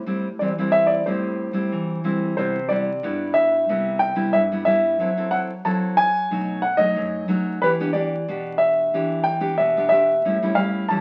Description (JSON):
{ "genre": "samba", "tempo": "92 BPM", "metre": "4/4", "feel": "straight", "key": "C major", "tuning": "A4 = 440 Hz", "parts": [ { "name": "nylon-string guitar", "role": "accompaniment", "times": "0.0-11.0 s", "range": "F#2 to A4", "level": "-27 LUFS", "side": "equal", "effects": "none" }, { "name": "warm concert grand piano", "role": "melody", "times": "0.4-11.0 s", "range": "B4 to A5", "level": "-22 LUFS", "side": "equal", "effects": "none" } ], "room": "wet studio reverb, RT60 0.5 s", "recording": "very old 78 rpm record, vinyl crackle", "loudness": "-21 LUFS", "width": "mono", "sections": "0.0-2.4 A section; 2.4-11.0 B section", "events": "none", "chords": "0.0 Am7; 2.4 Cmaj7; 5.0 F#m7b5; 6.3 B7; 7.6 Em7; 10.2 A7" }